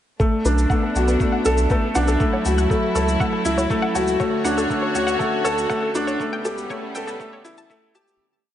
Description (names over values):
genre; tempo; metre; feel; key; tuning
piano and strings electronica; 120 BPM; 4/4; straight; B minor; A4 = 442 Hz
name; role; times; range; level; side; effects
rich symphonic string section; sustained chords; 0.2-8.2 s; C#3 to C#5; -26 LUFS; right 1 dB; none
analog pluck; arpeggios; 0.2-8.0 s; A4 to A5; -28 LUFS; left 1 dB; chorus, sidechain pumping, digital delay
felt-muted upright piano; riff; 0.2-8.2 s; A3 to A4; -22 LUFS; left 1 dB; digital delay
electronic kick drum; drums; 0.2-7.8 s; none; -23 LUFS; equal; none
shaker; drums; 0.2-8.2 s; none; -34 LUFS; equal; high-pass filter on perc, high-pass filter on room
warm sub bass; bass; 0.4-8.2 s; A1 to D2; -23 LUFS; equal; sidechain pumping
room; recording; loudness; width
moderate echo chamber reverb, RT60 2.1 s; high-pass filter, nothing above 10.8 kHz; -18 LUFS; side -11 dB against mid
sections
0.2-8.2 build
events
build-up 0.2-8.2; filter sweep on synth arpeggio sound 0.2-8.2; filter sweep 0.2-8.2; fade-out 5.5-8.2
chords
0.2 Bm7; 2.2 F#m7/C#; 4.2 Dmaj7; 6.2 A7/C#